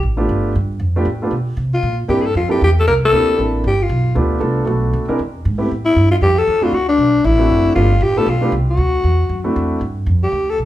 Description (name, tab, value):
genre	jazz, small-group swing and bop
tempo	233 BPM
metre	4/4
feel	swing 60% on 8ths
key	G mixolydian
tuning	A4 = 440 Hz
part	growling alto saxophone	melody	0.0-10.6 s	D4 to Bb4	-16 LUFS	left 2 dB	none
part	upright bass	bass	0.0-10.7 s	F#1 to C3	-17 LUFS	right 1 dB	none
part	warm concert grand piano	accompaniment	0.2-9.8 s	Ab3 to Bb4	-20 LUFS	right 1 dB	none
room	moderate large studio reverb, RT60 0.9 s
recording	band playing live in one room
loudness	-14 LUFS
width	side -14 dB against mid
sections	0.0-9.8 A section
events	none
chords	0.0 G9; 1.6 C9; 3.6 G9; 4.7 Bm7; 5.2 E; 5.7 A7(no3); 6.7 D9; 7.8 G9; 8.8 D9; 9.8 G7(no3)